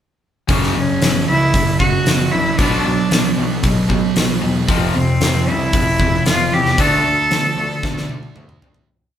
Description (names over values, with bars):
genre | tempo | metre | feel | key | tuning
quiet-loud alternative rock | 114 BPM | 4/4 | straight | unclear | A4 = 439 Hz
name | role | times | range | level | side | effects
cranked stack guitar | riff | 0.5-8.9 s | F2 to D4 | -22 LUFS | left 4 dB | overdrive
thick fuzz guitar | riff | 0.5-8.9 s | F2 to D4 | -21 LUFS | right 6 dB | distortion
fuzz picked electric bass | bass | 0.5-8.8 s | E1 to E2 | -23 LUFS | equal | overdrive
huge arena drum kit | drums | 0.5-8.9 s | hi-hat, kick drum, snare drum, toms | -19 LUFS | left 1 dB | none
bright cello | melody | 0.8-8.4 s | C4 to A4 | -18 LUFS | equal | none
room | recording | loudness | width
moderate stone room reverb, RT60 0.9 s | band playing live in one room | -14 LUFS | side -10 dB against mid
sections
0.5-8.9 pre-chorus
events
fade-out 6.8-8.9; drum fill 7.8-8.9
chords
0.5 F#5; 2.6 Bm; 4.7 F5; 6.8 D5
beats
| 0.49 1.02 1.54 2.06 | 2.59 3.11 3.63 4.16 | 4.68 5.21 5.73 6.26 | 6.79 7.31 7.84 8.37